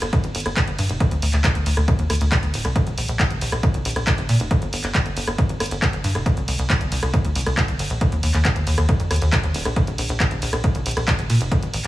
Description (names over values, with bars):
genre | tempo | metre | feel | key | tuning
uplifting trance | 137 BPM | 4/4 | straight | unclear | A4 = 440 Hz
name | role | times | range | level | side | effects
tight sequencer bass | bass | 0.0-11.9 s | D1 to Bb2 | -22 LUFS | equal | sidechain pumping
punchy analog drum machine | drums | 0.0-11.9 s | handclaps, hi-hat, ride cymbal, rim click | -25 LUFS | equal | studio reverb, sidechain pumping on hats, sidechain pumping on cymbals
electronic kick drum | drums | 0.1-11.6 s | none | -22 LUFS | equal | overdrive, studio reverb
room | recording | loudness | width
little or no reverb | small room ambience | -18 LUFS | side -16 dB against mid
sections
0.0-11.9 A section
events
none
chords
none